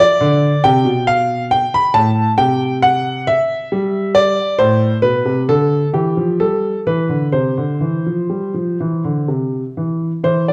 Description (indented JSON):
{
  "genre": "classical, baroque-style suite movement for grand piano",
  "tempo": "60-71 BPM",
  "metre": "3/4",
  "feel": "rubato",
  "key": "C major",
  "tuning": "A4 = 440 Hz",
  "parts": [
    { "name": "warm grand piano", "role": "solo", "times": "0.0-10.5 s", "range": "A2 to B5", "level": "-16 LUFS", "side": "equal", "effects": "none" }
  ],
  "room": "moderate recital hall reverb, RT60 1.4 s",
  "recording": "worn, warbling old tape, cassette tape, warbly pitch drift",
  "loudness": "-16 LUFS",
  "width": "mono",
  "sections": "0.0-10.2 A section",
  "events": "none",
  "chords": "0.0 Dm; 1.9 Am7; 3.7 N.C.; 4.6 Am; 5.5 Dm; 6.4 G; 7.3 C"
}